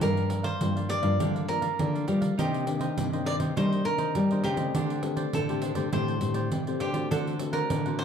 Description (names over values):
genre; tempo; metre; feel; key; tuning
samba and choro; 102 BPM; 4/4; straight; G minor; A4 = 440 Hz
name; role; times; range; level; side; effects
cavaquinho; melody; 0.0-8.0 s; G4 to D5; -31 LUFS; right 1 dB; none
cavaquinho; accompaniment; 0.0-8.0 s; D4 to F#5; -38 LUFS; right 5 dB; none
nylon-string guitar; accompaniment; 0.0-8.0 s; G2 to G4; -33 LUFS; left 8 dB; none
nylon-string guitar; bass; 0.0-8.0 s; G2 to G3; -29 LUFS; equal; none
pandeiro; percussion; 0.0-8.0 s; none; -32 LUFS; right 5 dB; none
room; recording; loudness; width
light reverb; dark, warm production; -25 LUFS; side -7 dB against mid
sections
0.0-8.0 A section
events
none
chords
0.0 Gm7; 2.4 Cm9; 4.7 D7sus4; 7.1 D7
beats
| 0.02 0.61 1.20 1.79 | 2.38 2.98 3.57 4.16 | 4.75 5.34 5.93 6.52 | 7.11 7.70